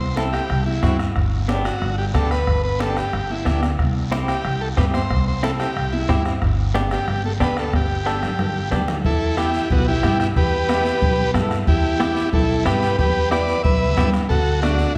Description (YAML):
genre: latin, cumbia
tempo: 182 BPM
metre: 4/4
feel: straight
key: unclear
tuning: A4 = 440 Hz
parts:
  - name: combo organ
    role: melody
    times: 0.0-15.0 s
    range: B3 to E5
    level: -25 LUFS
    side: equal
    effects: none
  - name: upright bass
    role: bass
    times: 0.0-15.0 s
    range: G1 to G2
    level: -25 LUFS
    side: equal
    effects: none
  - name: direct-recorded clean electric guitar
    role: accompaniment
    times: 0.2-14.9 s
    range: A3 to A4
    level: -29 LUFS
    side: equal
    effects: tremolo
  - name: bombo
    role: percussion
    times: 0.2-15.0 s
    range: none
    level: -26 LUFS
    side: equal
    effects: none
  - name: congas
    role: percussion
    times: 0.2-14.8 s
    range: none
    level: -30 LUFS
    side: equal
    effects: none
  - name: guiro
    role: percussion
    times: 0.2-15.0 s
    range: none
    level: -40 LUFS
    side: equal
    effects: none
room: wet scoring stage reverb, RT60 2.0 s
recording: recorded in a church or concert hall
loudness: -20 LUFS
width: mono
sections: 0.0-9.1 A section; 9.1-15.0 B section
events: drum fill 7.7-9.1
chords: 0.0 C; 1.2 G; 3.8 C; 6.4 G; 9.1 Em; 14.3 D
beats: 0.17 0.50 0.83 | 1.16 1.49 1.82 2.15 | 2.48 2.81 3.13 3.46 | 3.79 4.12 4.45 4.78 | 5.11 5.43 5.76 6.09 | 6.42 6.75 7.08 7.41 | 7.74 8.06 8.39 8.72 | 9.05 9.38 9.71 10.04 | 10.37 10.69 11.02 11.35 | 11.68 12.01 12.33 12.66 | 12.99 13.32 13.64 13.97 | 14.30 14.63 14.96